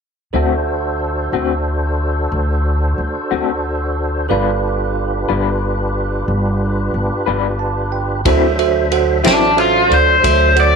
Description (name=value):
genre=slow blues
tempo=61 BPM (dotted quarters)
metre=12/8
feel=straight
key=D mixolydian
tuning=A4 = 440 Hz
part: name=bell-like tine electric piano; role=accompaniment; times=0.3-10.8 s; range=F#4 to A5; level=-21 LUFS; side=right 12 dB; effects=medium stereo tremolo
part: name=electric guitar through a small old amp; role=accompaniment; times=0.3-9.5 s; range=D3 to B4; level=-21 LUFS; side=left 12 dB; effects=tremolo
part: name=tonewheel organ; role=sustained chords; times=0.3-10.8 s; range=F#3 to E5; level=-21 LUFS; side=equal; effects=slow rotary speaker, overdrive, chorus vibrato
part: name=upright bass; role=bass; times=0.3-10.8 s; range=G1 to D2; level=-19 LUFS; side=equal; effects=none
part: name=vintage drum kit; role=drums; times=8.3-10.7 s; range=kick drum, ride cymbal, snare drum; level=-22 LUFS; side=left 1 dB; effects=none
part: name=raw garage guitar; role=melody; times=9.3-10.8 s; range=D4 to D5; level=-12 LUFS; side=left 2 dB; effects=overdrive
room=moderate spring reverb, RT60 2.2 s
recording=1960s-style stereo with parts hard left and right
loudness=-14 LUFS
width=side -5 dB against mid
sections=0.3-8.3 A section; 8.3-10.8 B section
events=tine electric piano fill 7.3-8.3; overdriven electric guitar solo 8.3-10.8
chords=0.3 D7; 4.3 G7; 8.3 D9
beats=| 0.34 1.33 2.32 3.31 | 4.30 5.29 6.29 7.28 | 8.26 9.25 10.24